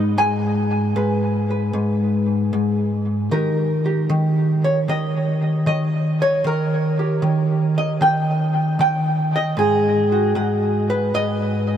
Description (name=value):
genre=solo jazz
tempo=77 BPM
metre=4/4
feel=swing 69% on 8ths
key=G# minor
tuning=A4 = 440 Hz
part: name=hollow-body jazz guitar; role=solo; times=0.0-11.8 s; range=G#2 to G#5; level=-17 LUFS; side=equal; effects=wide subtle chorus, tape echo
room=wet huge ambient reverb, RT60 7.3 s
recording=dreamy mix soaked in reverb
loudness=-17 LUFS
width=side -9 dB against mid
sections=0.0-11.8 A section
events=none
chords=0.0 G#m; 3.3 D#; 9.6 G#m7